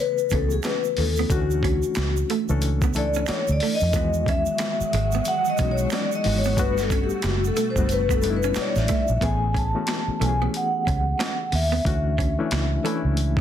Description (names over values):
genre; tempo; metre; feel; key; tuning
R&B, neo-soul; 91 BPM; 4/4; swing 61% on 16ths; A major; A4 = 441 Hz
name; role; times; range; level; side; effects
vibraphone with soft mallets; melody; 0.0-13.4 s; F#4 to A5; -26 LUFS; left 2 dB; none
barky reed electric piano; accompaniment; 0.0-13.4 s; C#3 to A4; -28 LUFS; left 4 dB; overdrive, fast tremolo
tube shaker and finger snaps; percussion; 0.2-9.2 s; none; -38 LUFS; right 13 dB; none
archtop guitar, miked and amplified; second line; 0.3-13.4 s; G#3 to C#4; -31 LUFS; right 10 dB; none
vintage muted fingered electric bass; bass; 0.3-13.4 s; F#1 to F2; -24 LUFS; right 1 dB; none
boom bap sampler-style drum kit; drums; 0.3-13.4 s; handclaps, hi-hat, kick drum, snare drum; -27 LUFS; equal; none
soft string machine; sustained chords; 4.4-9.2 s; B2 to F#4; -33 LUFS; right 1 dB; ensemble chorus
room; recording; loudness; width
light reverb; dense, heavily limited modern master; -20 LUFS; side -10 dB against mid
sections
0.0-9.2 A section; 9.2-13.4 B section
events
vibraphone solo 0.0-9.2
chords
0.0 Amaj9; 1.3 Dmaj9; 3.9 Emaj9; 6.6 Gmaj9; 9.2 Amaj9; 11.8 Dmaj9